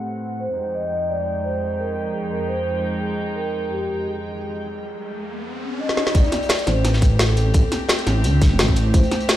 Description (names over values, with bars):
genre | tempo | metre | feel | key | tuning
liquid drum and bass | 172 BPM | 4/4 | swing 54% on 16ths | unclear | A4 = 438 Hz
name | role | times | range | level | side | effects
rich chamber string section | sustained chords | 0.0-9.4 s | F2 to G5 | -27 LUFS | right 1 dB | sidechain pumping, low-pass filter
vibraphone with soft mallets | melody | 0.4-9.4 s | G4 to Eb5 | -26 LUFS | equal | ping-pong delay
riser | sound effects | 4.4-6.1 s | none | -31 LUFS | left 2 dB | none
drum and bass drum kit | drums | 5.9-9.4 s | hi-hat, snare drum | -22 LUFS | equal | none
dark detuned saw bass | bass | 6.1-9.0 s | E1 to D2 | -18 LUFS | equal | none
crunchy breakbeat drum kit | drums | 6.1-9.4 s | hi-hat, snare drum | -27 LUFS | equal | high-pass filter on hats, high-pass filter on snare, high-pass filter on room
electronic kick drum | drums | 6.1-9.0 s | none | -16 LUFS | equal | none
room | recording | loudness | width
studio reverb | played on a big sound system in a bare room, stone room reverb, low-pass filter | -18 LUFS | side -13 dB against mid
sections
0.0-6.1 A section; 6.1-9.4 B section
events
filter sweep on string section 0.0-6.1; filter sweep 0.0-6.1; riser 4.4-6.1; drum fill 5.9; drop 6.1-9.4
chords
0.0 Am; 0.6 Fm7; 6.1 Am7